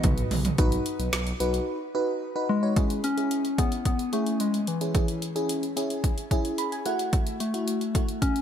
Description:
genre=synth-pop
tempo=110 BPM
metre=4/4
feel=straight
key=unclear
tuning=A4 = 440 Hz
part: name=soft struck synth lead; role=melody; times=0.0-8.4 s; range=E3 to C#4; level=-28 LUFS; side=left 2 dB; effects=chorus, shimmer reverb
part: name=FM electric piano with soft pad layer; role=accompaniment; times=0.0-8.3 s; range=A3 to B5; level=-29 LUFS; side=right 1 dB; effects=chorus, phaser, shimmer reverb
part: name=smooth gliding synth bass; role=bass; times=0.0-1.6 s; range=B1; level=-29 LUFS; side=equal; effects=none
part: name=deep house drum kit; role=drums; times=0.0-8.4 s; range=hi-hat, kick drum, snare drum, toms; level=-26 LUFS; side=equal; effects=none
room=light reverb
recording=none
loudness=-24 LUFS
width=side -9 dB against mid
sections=0.6-2.8 A section; 2.8-8.4 B section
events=drum fill 0.0-0.6; silent gap 1.7-2.8; FM electric piano fill 6.3-7.1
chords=0.0 B; 2.8 E6; 6.9 F#m7

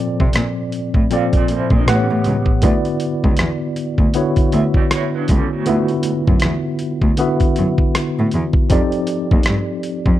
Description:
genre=R&B, neo-soul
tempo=79 BPM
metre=4/4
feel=swing 59% on 16ths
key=D major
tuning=A4 = 441 Hz
part: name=tine electric piano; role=accompaniment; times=0.0-10.2 s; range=A2 to F#5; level=-19 LUFS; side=equal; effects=overdrive, fast stereo tremolo
part: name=warm cello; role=bass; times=0.2-10.1 s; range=C#2 to C3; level=-20 LUFS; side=equal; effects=none
part: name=boom bap sampler-style drum kit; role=drums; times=0.2-10.2 s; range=hi-hat, kick drum, rim click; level=-16 LUFS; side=equal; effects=none
part: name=electric guitar through a small old amp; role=second line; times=1.1-6.6 s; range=A3 to F5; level=-25 LUFS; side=right 6 dB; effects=tremolo
room=digital ambience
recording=dry, close 1970s-style studio recording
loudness=-14 LUFS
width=side -13 dB against mid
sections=0.0-10.2 A section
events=none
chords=0.0 Bbmaj9; 1.9 A13; 2.6 D6; 8.7 F13

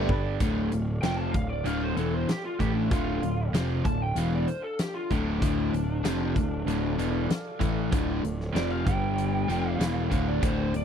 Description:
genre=classic rock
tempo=96 BPM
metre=4/4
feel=straight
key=D dorian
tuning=A4 = 440 Hz
part: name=lead guitar through a small cranked amp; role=melody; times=0.0-10.8 s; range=D4 to A5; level=-33 LUFS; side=equal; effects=overdrive
part: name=tonewheel organ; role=sustained chords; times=0.0-10.8 s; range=D4 to F5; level=-42 LUFS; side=right 2 dB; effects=none
part: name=overdriven electric guitar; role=riff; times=0.0-10.8 s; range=D2 to G4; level=-32 LUFS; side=right 10 dB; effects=none
part: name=overdriven semi-hollow guitar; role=riff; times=0.0-10.8 s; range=D2 to A3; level=-31 LUFS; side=left 12 dB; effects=none
part: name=fuzz picked electric bass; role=bass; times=0.0-10.8 s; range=D1 to A1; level=-31 LUFS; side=equal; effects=overdrive
part: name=huge arena drum kit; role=drums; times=0.1-10.8 s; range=hi-hat, kick drum, snare drum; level=-30 LUFS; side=equal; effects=none
room=little or no reverb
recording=dry, close 1970s-style studio recording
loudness=-25 LUFS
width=side -8 dB against mid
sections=0.4-10.8 A section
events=lead electric guitar solo 0.4-10.8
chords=0.4 Dm; 8.9 G5; 9.5 Dm

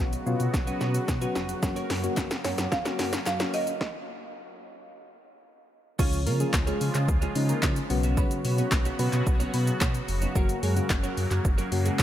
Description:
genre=dance-pop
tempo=110 BPM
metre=4/4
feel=straight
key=unclear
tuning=A4 = 441 Hz
part: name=buzzing marimba with hard mallets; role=melody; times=0.0-5.4 s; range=C#5 to F5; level=-35 LUFS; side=right 2 dB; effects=tape echo
part: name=soft electric-piano-like synth keys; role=accompaniment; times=0.0-12.0 s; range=Db3 to Ab4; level=-33 LUFS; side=left 3 dB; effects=chorus, sidechain pumping
part: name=sweeping resonant pad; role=sustained chords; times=0.0-12.0 s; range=Db3 to F#4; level=-36 LUFS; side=equal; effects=chorus, sidechain pumping
part: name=clean electric guitar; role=riff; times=0.0-12.0 s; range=B3 to C#5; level=-38 LUFS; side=right 6 dB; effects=analog chorus
part: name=sub bass with octave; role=bass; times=0.0-12.0 s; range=D1 to Db3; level=-28 LUFS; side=equal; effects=sidechain pumping
part: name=punchy analog drum machine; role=drums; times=0.1-12.0 s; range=crash cymbal, handclaps, hi-hat, kick drum, shaker, snare drum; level=-28 LUFS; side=equal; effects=overdrive
part: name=group handclap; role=percussion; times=2.2-12.0 s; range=none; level=-43 LUFS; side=left 5 dB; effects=none
part: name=glassy wavetable pluck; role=melody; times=6.0-12.0 s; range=Gb3 to Db5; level=-35 LUFS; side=equal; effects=chorus, sidechain pumping, tape echo
room=light reverb, digital ambience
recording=high-pass filter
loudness=-24 LUFS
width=side -12 dB against mid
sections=0.0-6.0 A section; 6.0-12.0 B section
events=build-up 0.0-6.0; drum fill 0.0-3.8; stop 3.8-6.0; drop 6.0-12.0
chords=0.0 Bsus2; 1.6 Gb; 3.8 N.C.; 6.0 Db; 7.9 Bsus2; 10.4 Gb

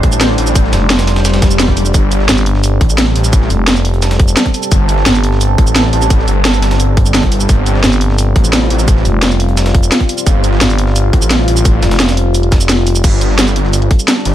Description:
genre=dark technical drum and bass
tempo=173 BPM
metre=4/4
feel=straight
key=unclear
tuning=A4 = 439 Hz
part: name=deep dark ambient pad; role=sustained chords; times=0.0-14.3 s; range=G3 to C5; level=-18 LUFS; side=equal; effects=chorus, built-in reverb, sidechain pumping
part: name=growling FM bass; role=bass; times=0.0-5.6, 7.8-13.0 s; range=F1 to G1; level=-13 LUFS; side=equal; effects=none
part: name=wide detuned saw bass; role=bass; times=0.0-14.3 s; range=G1 to A1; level=-13 LUFS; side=equal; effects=chorus, overdrive, sidechain pumping
part: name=breakbeat sampler-style drum kit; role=drums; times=0.0-14.3 s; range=hi-hat, snare drum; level=-25 LUFS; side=equal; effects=high-pass filter on snare, high-pass filter on hats
part: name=drum and bass drum kit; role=drums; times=0.0-14.3 s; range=crash cymbal, hi-hat, shaker, snare drum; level=-14 LUFS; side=right 1 dB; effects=none
part: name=electronic kick drum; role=drums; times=0.0-14.0 s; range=none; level=-11 LUFS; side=equal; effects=none
part: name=swell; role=sound effects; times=1.4-1.9 s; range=none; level=-21 LUFS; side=left 3 dB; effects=none
room=little or no reverb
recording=none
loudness=-9 LUFS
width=side -12 dB against mid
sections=0.0-13.0 A section; 13.0-14.3 A section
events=drop 0.0-13.0, 13.0-14.3; swell 1.4-1.9; kick drops out 12.7-13.0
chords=0.0 G5

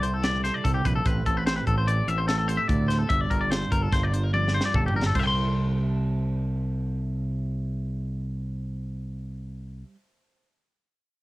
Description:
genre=math rock and midwest emo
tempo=147 BPM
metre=5/4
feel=straight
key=C major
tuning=A4 = 440 Hz
part: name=clean electric guitar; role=accompaniment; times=0.0-10.6 s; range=G2 to A5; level=-31 LUFS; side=right 3 dB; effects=cassette tape
part: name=twangy electric guitar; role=arpeggios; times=0.0-9.9 s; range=G4 to C6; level=-27 LUFS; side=left 3 dB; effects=warbly pitch drift, cassette tape
part: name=growling fingered electric bass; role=bass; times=0.0-9.8 s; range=G1 to D2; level=-27 LUFS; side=equal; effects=overdrive
part: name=crisp fusion drum kit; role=drums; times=0.0-5.2 s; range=crash cymbal, hi-hat, kick drum, snare drum, toms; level=-28 LUFS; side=equal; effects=none
room=studio ambience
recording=home recording on cassette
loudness=-23 LUFS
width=side -18 dB against mid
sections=0.0-5.1 A section; 5.1-9.2 B section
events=drum fill 4.3-5.1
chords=0.0 C6; 1.1 Am7; 3.1 Gm7; 5.1 C6

